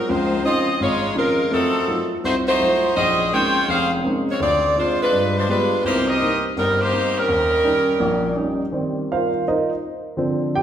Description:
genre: jazz.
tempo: 166 BPM.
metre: 4/4.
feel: swing 65% on 8ths.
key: unclear.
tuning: A4 = 440 Hz.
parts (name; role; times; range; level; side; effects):
edgy saxophone section; melody; 0.0-8.4 s; Gb3 to G5; -19 LUFS; equal; none.
warm upright piano; accompaniment; 0.1-10.6 s; F1 to G5; -21 LUFS; equal; none.
room: wet recital hall reverb, RT60 1.7 s.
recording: recorded in a church or concert hall.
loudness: -17 LUFS.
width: side -9 dB against mid.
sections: 0.0-8.7 A section; 8.7-10.6 B section.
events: upright piano solo 8.7-10.6.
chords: 0.1 Dbmaj9; 1.5 F7b9; 3.0 Bbm11; 4.4 Dm7b5; 5.1 G7b9; 5.8 Cm7; 7.3 Eb7; 8.7 Eb69.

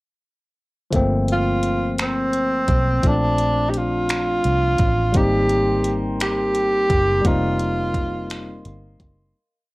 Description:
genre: slow six-eight R&B.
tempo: 57 BPM (dotted quarters).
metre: 6/8.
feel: straight.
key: unclear.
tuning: A4 = 441 Hz.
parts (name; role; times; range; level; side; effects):
barky tine electric piano; accompaniment; 0.9-9.4 s; F3 to Eb4; -24 LUFS; left 2 dB; overdrive.
vintage muted fingered electric bass; bass; 0.9-9.3 s; F1 to C2; -24 LUFS; equal; none.
smooth R&B drum kit; drums; 0.9-9.2 s; finger snaps, hi-hat, kick drum; -22 LUFS; equal; none.
breathy tenor saxophone; melody; 1.3-8.7 s; C4 to G4; -21 LUFS; right 1 dB; slapback echo.
glass harmonica; sustained chords; 5.2-9.3 s; Bb4 to C6; -35 LUFS; equal; plate reverb.
room: light reverb.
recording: worn, warbling old tape, cassette tape, warbly pitch drift.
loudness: -17 LUFS.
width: side -21 dB against mid.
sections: 0.9-9.3 bridge.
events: fade-out 7.2-9.3.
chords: 0.9 Gm11; 3.0 Bbmaj9; 5.1 Abmaj9; 7.2 F7sus4.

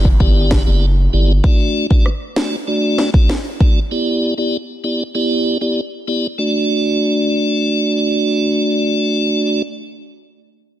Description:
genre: dancehall.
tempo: 97 BPM.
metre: 4/4.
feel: straight.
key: D major.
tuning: A4 = 440 Hz.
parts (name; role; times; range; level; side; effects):
tonewheel organ; accompaniment; 0.0-9.6 s; A3 to D5; -17 LUFS; right 1 dB; slow rotary speaker.
saturated sub bass; bass; 0.0-1.4 s; F#1 to G1; -14 LUFS; equal; none.
downlifter; sound effects; 0.0-1.4 s; none; -37 LUFS; right 1 dB; none.
afro-pop drum kit; drums; 0.1-3.7 s; kick drum, rim click, snare drum; -14 LUFS; equal; vintage 12-bit sampler grit.
room: little or no reverb.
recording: dense, heavily limited modern master.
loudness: -14 LUFS.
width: side -12 dB against mid.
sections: 0.0-6.4 A section; 6.4-8.9 B section.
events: none.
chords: 0.0 G6; 1.4 D; 3.9 G6; 6.4 D.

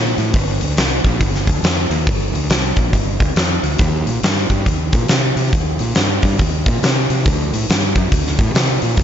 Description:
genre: blues rock power trio and southern rock.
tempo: 139 BPM.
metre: 4/4.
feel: swing 62% on 8ths.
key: G minor.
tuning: A4 = 440 Hz.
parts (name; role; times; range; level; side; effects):
fuzz fingered electric bass; bass; 0.0-9.0 s; G1 to C3; -19 LUFS; equal; overdrive.
huge arena drum kit; drums; 0.2-9.0 s; hi-hat, kick drum, snare drum; -16 LUFS; equal; none.
room: little or no reverb.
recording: nothing above 7.6 kHz.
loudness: -14 LUFS.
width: side -9 dB against mid.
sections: 0.0-9.0 A section.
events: none.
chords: none.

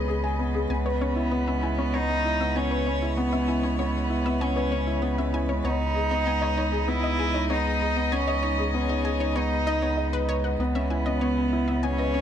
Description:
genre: piano and strings electronica.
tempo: 97 BPM.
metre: 4/4.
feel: straight.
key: C# minor.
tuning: A4 = 441 Hz.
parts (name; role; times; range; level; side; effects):
warm cello; melody; 0.0-12.2 s; B3 to E4; -28 LUFS; right 1 dB; none.
warm string quartet; sustained chords; 0.0-12.2 s; C#3 to E5; -32 LUFS; right 2 dB; none.
felt-muted upright piano; riff; 0.0-12.2 s; B3 to G#5; -28 LUFS; left 1 dB; ping-pong delay.
round analog bass; bass; 0.0-12.2 s; C#2; -28 LUFS; equal; tube saturation.
analog pluck; arpeggios; 0.7-12.2 s; B4 to G#5; -36 LUFS; left 4 dB; chorus, ping-pong delay.
room: light reverb.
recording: none.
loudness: -23 LUFS.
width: side -9 dB against mid.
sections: 0.0-12.2 A section.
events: none.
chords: 0.0 G#m/C#; 0.7 C#m7; 5.6 G#m/C#; 10.6 C#m7.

